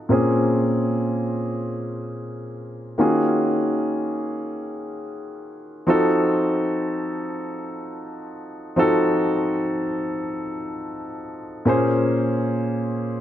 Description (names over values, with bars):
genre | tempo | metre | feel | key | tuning
R&B | free time | none | none | unclear | A4 = 440 Hz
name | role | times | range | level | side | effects
dark concert grand piano | solo | 0.0-13.2 s | Bb2 to C5 | -21 LUFS | equal | low-pass filter
room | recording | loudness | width
moderate lush hall reverb, RT60 2.6 s | none | -20 LUFS | side -11 dB against mid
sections
0.0-5.9 A section; 5.9-13.2 B section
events
none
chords
0.1 Bbm7; 3.0 Ebm11; 5.9 F7b9; 11.7 Bbm7